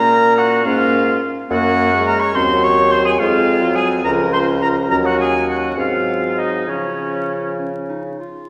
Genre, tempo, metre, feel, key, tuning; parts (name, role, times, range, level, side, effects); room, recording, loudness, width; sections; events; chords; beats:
quick classical-period movement for wind quintet; 70 BPM (dotted quarters); 6/8; uneven beats, rubato; Db major; A4 = 437 Hz
silver concert flute; melody; 0.0-7.6 s; Db5 to Db6; -22 LUFS; equal
warm oboe; second line; 0.0-7.6 s; Db4 to Db5; -24 LUFS; equal
mellow French horn; accompaniment; 0.0-8.2 s; F3 to Bb3; -23 LUFS; equal
mellow clarinet; accompaniment; 0.0-8.5 s; C4 to F4; -27 LUFS; equal
mellow bassoon; bass; 0.0-8.2 s; Db2 to Db3; -23 LUFS; equal
wet scoring stage reverb, RT60 1.6 s; recorded in a church or concert hall, vinyl crackle; -17 LUFS; mono
0.0-8.5 A section
0.0 Bbm; 1.5 Gb; 2.3 Cdim/Eb; 3.2 Fm; 4.0 Bbmadd9/Db; 4.9 Ebm7; 5.8 Ab7; 6.7 Db
0.66 | 1.50 2.35 | 3.19 4.05 | 4.90 5.77 | 6.68 7.59